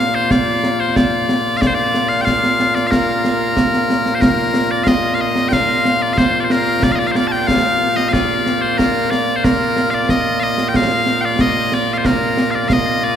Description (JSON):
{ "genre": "scottish traditional, Scottish pipe music", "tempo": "92 BPM", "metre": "2/4", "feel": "straight", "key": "Bb major", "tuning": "A4 = 439 Hz", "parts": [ { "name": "loud bright bagpipes", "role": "melody", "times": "0.0-13.2 s", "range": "Bb2 to A5", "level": "-15 LUFS", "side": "left 1 dB", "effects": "none" }, { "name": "concert snare drum and concert bass drum", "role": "drums", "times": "0.3-13.1 s", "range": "none", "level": "-18 LUFS", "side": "right 1 dB", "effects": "none" } ], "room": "wet cathedral reverb, RT60 5.7 s", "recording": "recorded in a church or concert hall", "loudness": "-14 LUFS", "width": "side -9 dB against mid", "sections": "0.0-4.2 A section; 4.2-13.2 B section", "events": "none", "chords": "none" }